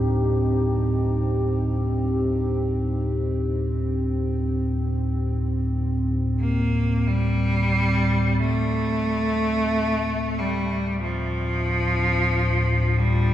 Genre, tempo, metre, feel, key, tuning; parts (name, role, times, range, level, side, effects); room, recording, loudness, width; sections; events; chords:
dark ambient drone; free time; D in sen; A4 = 440 Hz
dark analog pad; sustained chords; 0.0-13.3 s; C4 to G4; -28 LUFS; right 1 dB; chorus
deep rumbling drone; drone; 0.0-13.3 s; D2 to A2; -23 LUFS; equal; built-in reverb
clear cello; melody; 6.4-13.3 s; F3 to Bb3; -23 LUFS; right 1 dB; diffuse ambient delay
wet cathedral reverb, RT60 5.2 s; in a vast, echoing space, cassette tape; -21 LUFS; side -12 dB against mid
0.0-8.4 A section; 8.4-13.3 B section
0.0 Eb/D; 8.4 Dm